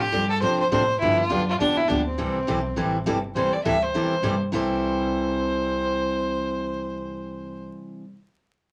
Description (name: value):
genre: country, western swing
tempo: 205 BPM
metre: 4/4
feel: swing 60% on 8ths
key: C major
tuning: A4 = 442 Hz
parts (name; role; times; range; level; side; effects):
- clear fiddle; melody; 0.0-7.6 s; C4 to E5; -27 LUFS; equal; none
- picked steel-string acoustic guitar; accompaniment; 0.0-8.0 s; C3 to A4; -28 LUFS; equal; none
- upright bass; bass; 0.0-7.7 s; G1 to A2; -34 LUFS; equal; none
room: wet small room ambience, RT60 0.5 s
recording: vinyl crackle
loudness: -24 LUFS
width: mono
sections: 0.0-3.4 A section; 3.4-4.5 B section; 4.5-6.9 C section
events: none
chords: 0.0 F6; 1.0 G7; 2.2 C6